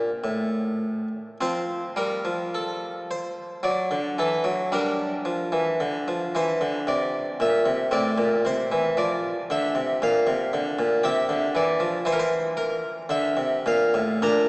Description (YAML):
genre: classical, baroque-style suite movement for harpsichord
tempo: 56 BPM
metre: 3/4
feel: uneven beats, rubato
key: F major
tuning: A4 = 438 Hz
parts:
  - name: harpsichord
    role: solo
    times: 0.0-14.5 s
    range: A2 to Bb5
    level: -22 LUFS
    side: equal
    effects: none
room: wet cathedral reverb, RT60 4.2 s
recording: heard from further back in the room, small speaker sound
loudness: -22 LUFS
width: side -25 dB against mid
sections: 0.0-1.4 A section; 1.4-14.5 B section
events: none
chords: 0.0 F; 1.4 F5; 3.6 D; 4.7 Gm; 6.9 C7; 7.9 F5; 10.0 Bbadd9; 11.0 C; 13.1 Dm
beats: 0.24 | 1.41 2.53 3.64 | 4.71 5.80 6.87 | 7.91 8.96 10.01 | 11.03 12.04 13.09 | 14.22